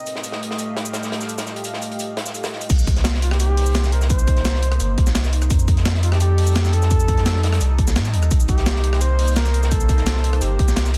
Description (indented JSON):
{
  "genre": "liquid drum and bass",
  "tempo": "171 BPM",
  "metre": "4/4",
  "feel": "straight",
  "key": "C dorian",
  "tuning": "A4 = 440 Hz",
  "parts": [
    { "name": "lush unison pad", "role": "sustained chords", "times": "0.0-11.0 s", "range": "G3 to F5", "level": "-32 LUFS", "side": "equal", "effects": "chorus, phaser, sidechain pumping" },
    { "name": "breakbeat sampler-style drum kit", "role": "drums", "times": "0.1-11.0 s", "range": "crash cymbal, hi-hat, rim click, shaker, snare drum", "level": "-29 LUFS", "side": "equal", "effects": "none" },
    { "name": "crunchy breakbeat drum kit", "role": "drums", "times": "0.1-11.0 s", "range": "hi-hat, snare drum", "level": "-33 LUFS", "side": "equal", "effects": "high-pass filter on hats, high-pass filter on snare, high-pass filter on room" },
    { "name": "warm sub bass", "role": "bass", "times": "2.7-11.0 s", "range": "G1 to A2", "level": "-20 LUFS", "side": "equal", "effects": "none" },
    { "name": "electronic kick drum", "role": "drums", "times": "2.7-10.7 s", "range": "none", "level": "-21 LUFS", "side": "equal", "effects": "none" },
    { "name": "breathy flugelhorn", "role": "melody", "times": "3.2-10.9 s", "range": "F4 to C5", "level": "-30 LUFS", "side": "equal", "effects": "dub echo" }
  ],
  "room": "light reverb, studio ambience",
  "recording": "dense, heavily limited modern master",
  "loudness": "-19 LUFS",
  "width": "mono",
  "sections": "0.0-2.7 A section; 2.7-11.0 B section",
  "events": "drop 2.7-11.0",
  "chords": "0.0 F9; 2.7 Cm7; 5.5 F9; 8.3 Cm7"
}